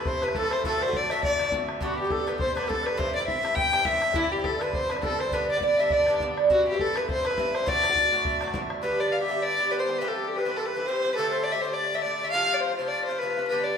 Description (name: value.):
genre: celtic folk, Celtic reel.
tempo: 206 BPM.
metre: 4/4.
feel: swing 56% on 8ths.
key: D mixolydian, G mixolydian from 8.8 s.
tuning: A4 = 440 Hz.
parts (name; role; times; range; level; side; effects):
dark fiddle; melody; 0.0-13.8 s; E4 to G5; -26 LUFS; left 1 dB; none.
wooden flute; second line; 0.0-13.8 s; E4 to G5; -32 LUFS; left 3 dB; none.
Irish bouzouki; accompaniment; 0.0-13.8 s; G2 to G4; -28 LUFS; right 2 dB; none.
bodhran; percussion; 0.1-8.8 s; none; -34 LUFS; left 1 dB; none.
room: wet large studio reverb, RT60 1.3 s.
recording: band playing live in one room.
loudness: -23 LUFS.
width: side -7 dB against mid.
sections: 0.0-8.8 A section; 8.8-13.8 B section.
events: none.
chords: 0.0 Am; 0.6 D; 1.8 Gadd9; 3.0 C; 4.2 Cadd9; 5.3 G; 6.5 C; 7.7 D; 8.8 G; 10.0 C; 11.2 Gsus2; 12.3 F.